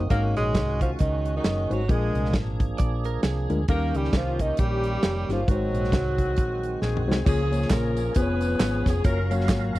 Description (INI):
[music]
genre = uptempo gospel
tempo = 134 BPM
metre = 4/4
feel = swing 58% on 8ths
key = Db major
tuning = A4 = 440 Hz
[part]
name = clean electric guitar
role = second line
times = 0.0-3.7 s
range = Ab4 to Eb5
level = -36 LUFS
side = right 7 dB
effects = none
[part]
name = mellow tine electric piano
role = accompaniment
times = 0.0-9.8 s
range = Ab2 to F5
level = -28 LUFS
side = left 3 dB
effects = none
[part]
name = tonewheel organ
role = sustained chords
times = 0.0-9.8 s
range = Eb3 to F5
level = -34 LUFS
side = right 3 dB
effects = fast rotary speaker, chorus vibrato
[part]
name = hollow-body short-scale fingered electric bass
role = bass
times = 0.0-9.8 s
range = F1 to Eb2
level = -27 LUFS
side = equal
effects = none
[part]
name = breathy tenor saxophone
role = melody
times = 0.1-6.8 s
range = Eb3 to Bb3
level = -30 LUFS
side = right 3 dB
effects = none
[part]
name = clear saxophone section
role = melody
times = 0.1-9.8 s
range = Gb3 to Cb5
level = -31 LUFS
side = left 3 dB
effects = none
[part]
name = modern studio drum kit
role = drums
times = 0.1-9.8 s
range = crash cymbal, hi-hat, kick drum, snare drum, toms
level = -25 LUFS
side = equal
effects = none
[part]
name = tambourine and handclaps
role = percussion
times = 7.3-9.8 s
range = none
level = -40 LUFS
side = right 6 dB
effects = none
[sound]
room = small room ambience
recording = dry, close 1970s-style studio recording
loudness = -22 LUFS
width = side -17 dB against mid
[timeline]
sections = 0.0-7.3 A section; 7.3-9.8 B section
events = drum fill 6.8-7.3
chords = 0.1 Ab7sus4; 1.9 Bb7; 3.7 Eb7; 5.5 Ab7; 7.3 Db6; 8.2 Db7/F; 9.1 Gbmaj7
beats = | 0.11 0.56 1.00 1.45 | 1.90 2.34 2.79 3.24 | 3.69 4.13 4.58 5.03 | 5.47 5.92 6.37 6.82 | 7.26 7.71 8.16 8.60 | 9.05 9.50